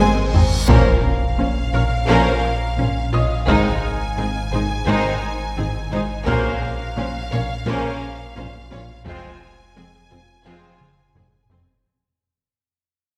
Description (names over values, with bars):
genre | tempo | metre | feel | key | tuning
cinematic, hybrid orchestral and electronic film score | 86 BPM | 4/4 | straight | Bb minor | A4 = 440 Hz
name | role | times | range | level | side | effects
rich symphonic violin section | melody | 0.0-11.6 s | C5 to Ab5 | -31 LUFS | equal | none
warm symphonic violin section | second line | 0.0-11.6 s | Eb4 to Db5 | -30 LUFS | equal | none
warm symphonic viola section | accompaniment | 0.0-11.6 s | C4 to Eb4 | -32 LUFS | equal | none
mellow French horn section | sustained chords | 0.0-10.7 s | C4 to C5 | -31 LUFS | equal | none
mellow trombone section | sustained chords | 0.0-10.7 s | Db3 to Bb3 | -32 LUFS | equal | none
tight sequenced synth | arpeggios | 0.0-11.7 s | F3 to Bb4 | -31 LUFS | equal | chorus, phaser, digital delay
sub bass with octave | bass | 0.0-11.9 s | F1 to Bb1 | -28 LUFS | equal | none
warm symphonic cello section | bass | 0.0-11.6 s | F2 to Bb2 | -29 LUFS | equal | none
warm symphonic double bass section | bass | 0.0-11.6 s | F1 to Bb1 | -28 LUFS | equal | none
reverse cymbal and impact | sound effects | 0.3-3.5 s | none | -26 LUFS | equal | none
taiko ensemble | drums | 0.3-11.8 s | none | -24 LUFS | equal | none
bright concert grand piano | texture | 1.7-9.1 s | Gb4 to F6 | -34 LUFS | equal | digital delay
room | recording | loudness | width
wet scoring stage reverb, RT60 1.7 s | heard from further back in the room | -20 LUFS | mono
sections
0.7-11.9 A section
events
drum fill 0.0-0.7, 10.8-11.9; reverse cymbal 0.3-0.7; fade-out 0.7-11.9; impact 0.7-3.5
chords
0.0 Ab; 0.7 Bbmadd9; 3.5 Ab; 6.3 Bbmadd9; 9.1 Fm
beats
| 0.69 1.39 2.08 2.78 | 3.48 4.18 4.87 5.57 | 6.27 6.97 7.67 8.36 | 9.06 9.76 10.46 11.15